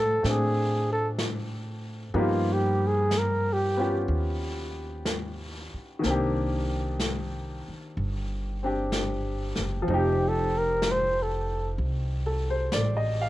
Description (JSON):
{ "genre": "jazz ballad", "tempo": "63 BPM", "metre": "4/4", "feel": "swing 69% on 8ths", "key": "unclear", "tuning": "A4 = 440 Hz", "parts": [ { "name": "warm flugelhorn", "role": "melody", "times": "0.0-4.0, 10.0-11.7 s", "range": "F4 to C5", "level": "-26 LUFS", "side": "equal", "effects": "cassette tape, plate reverb" }, { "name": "bright upright piano", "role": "accompaniment", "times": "0.0-13.3 s", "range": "Eb3 to F5", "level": "-31 LUFS", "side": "left 1 dB", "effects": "plate reverb" }, { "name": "upright bass", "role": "bass", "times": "0.0-13.3 s", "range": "F1 to A2", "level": "-29 LUFS", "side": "equal", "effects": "none" }, { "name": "jazz brush drum kit", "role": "drums", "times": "0.2-13.3 s", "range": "brushed snare drum, hi-hat, snare drum", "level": "-35 LUFS", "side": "left 1 dB", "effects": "cassette tape" } ], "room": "moderate booth ambience, RT60 0.2 s", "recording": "home recording on cassette", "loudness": "-25 LUFS", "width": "side -15 dB against mid", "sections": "0.0-13.3 A section", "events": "flugelhorn solo 0.0-13.3", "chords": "0.0 Dm7; 2.1 G7alt; 6.0 Cm9; 9.9 F7", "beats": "0.23 1.19 | 2.15 3.11 4.09 5.06 | 6.04 7.01 7.97 8.93 | 9.89 10.84 11.79 12.74" }